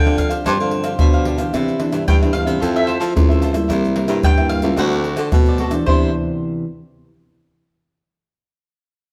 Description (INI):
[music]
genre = samba and choro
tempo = 111 BPM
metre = 4/4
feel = straight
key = C major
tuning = A4 = 441 Hz
[part]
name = mandolin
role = melody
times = 0.0-6.1 s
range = C5 to G5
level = -26 LUFS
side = equal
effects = none
[part]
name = cavaquinho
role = accompaniment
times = 0.0-6.1 s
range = D4 to F5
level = -29 LUFS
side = equal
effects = none
[part]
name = nylon-string guitar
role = accompaniment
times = 0.0-6.6 s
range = G2 to A4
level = -25 LUFS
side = equal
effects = none
[part]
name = warm baritone saxophone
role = bass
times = 0.0-6.1 s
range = C2 to F3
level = -22 LUFS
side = equal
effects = none
[part]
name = egg shaker, pandeiro, tamborim and surdo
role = percussion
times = 0.1-6.0 s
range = none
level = -20 LUFS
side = equal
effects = none
[sound]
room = moderate large studio reverb, RT60 1.3 s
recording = none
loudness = -17 LUFS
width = mono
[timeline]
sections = 0.0-1.5 A section; 1.5-5.9 B section; 5.9-8.0 C section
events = none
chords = 0.0 G7sus4; 1.5 Cmaj9; 2.6 Fmaj7; 3.7 C7; 4.8 D7; 5.9 Cmaj9